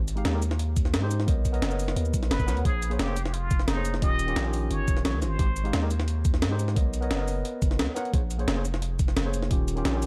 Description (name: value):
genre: liquid drum and bass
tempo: 175 BPM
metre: 4/4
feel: straight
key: Bb dorian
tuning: A4 = 439 Hz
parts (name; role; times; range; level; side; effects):
- long sustained 808-style bass; bass; 0.0-10.1 s; Eb1 to Ab2; -30 LUFS; equal; none
- breakbeat sampler-style drum kit; drums; 0.1-10.1 s; hi-hat, shaker, snare drum; -33 LUFS; equal; none
- tine electric piano; accompaniment; 0.2-10.1 s; Eb3 to F#5; -35 LUFS; equal; overdrive, digital delay
- electronic kick drum; drums; 0.8-9.6 s; none; -28 LUFS; equal; overdrive
- trumpet with plunger mute; melody; 2.3-5.9 s; Eb4 to Eb5; -36 LUFS; equal; tape echo
room: little or no reverb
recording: dark, warm production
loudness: -26 LUFS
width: mono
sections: 0.0-10.1 A section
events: none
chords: 0.0 Abmaj7; 1.3 Bmaj9; 2.6 Bbm9; 4.0 Eb9; 5.4 Abmaj7; 6.8 Bmaj9; 8.1 Bbm9; 9.5 Eb9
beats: 0.25 0.59 0.94 | 1.28 1.62 1.97 2.31 | 2.65 2.99 3.34 3.68 | 4.02 4.37 4.71 5.05 | 5.39 5.74 6.08 6.42 | 6.76 7.11 7.45 7.79 | 8.14 8.48 8.82 9.16 | 9.51 9.85